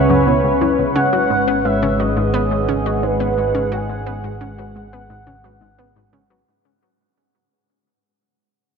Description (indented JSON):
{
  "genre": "ambient, sequencer-driven space music",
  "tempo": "87 BPM",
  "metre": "4/4",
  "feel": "straight",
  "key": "unclear",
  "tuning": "A4 = 440 Hz",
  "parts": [
    { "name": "expressive synth lead", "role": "melody", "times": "0.0-5.7 s", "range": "B4 to G#5", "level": "-22 LUFS", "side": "right 2 dB", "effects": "lush chorus, ping-pong delay" },
    { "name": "sweeping resonant pad", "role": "sustained chords", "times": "0.0-6.5 s", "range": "C#3 to F#5", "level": "-18 LUFS", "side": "equal", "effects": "chorus" },
    { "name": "fat analog bass", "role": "bass", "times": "0.0-6.4 s", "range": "G#1 to C#2", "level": "-24 LUFS", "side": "equal", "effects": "none" },
    { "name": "analog pluck", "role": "riff", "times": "0.1-6.4 s", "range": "C#2 to B3", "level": "-22 LUFS", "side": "equal", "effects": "chorus, ping-pong delay" }
  ],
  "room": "wet cathedral reverb, RT60 6.9 s",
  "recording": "dreamy mix soaked in reverb",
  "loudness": "-15 LUFS",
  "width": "side -6 dB against mid",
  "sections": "0.0-6.5 A section",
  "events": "fade-out 0.0-6.5",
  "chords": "0.0 C#m7; 1.0 G#m7"
}